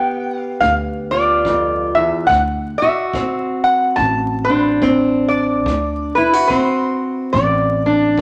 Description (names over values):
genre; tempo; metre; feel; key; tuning
acoustic country blues, solo or duo; 71 BPM; 4/4; swing 60% on 8ths; D mixolydian; A4 = 440 Hz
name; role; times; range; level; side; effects
lap resonator guitar; melody; 0.0-8.2 s; B4 to A5; -19 LUFS; equal; none
fingerpicked steel-string acoustic guitar; accompaniment; 0.0-8.2 s; D2 to G4; -20 LUFS; equal; none
upright bass; bass; 0.6-8.2 s; A1 to D2; -26 LUFS; equal; none
kick drum; drums; 0.6-8.2 s; none; -32 LUFS; equal; none
room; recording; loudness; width
moderate large studio reverb, RT60 1.2 s; vinyl crackle; -17 LUFS; mono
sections
0.0-8.2 A section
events
none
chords
0.0 G7; 2.3 D7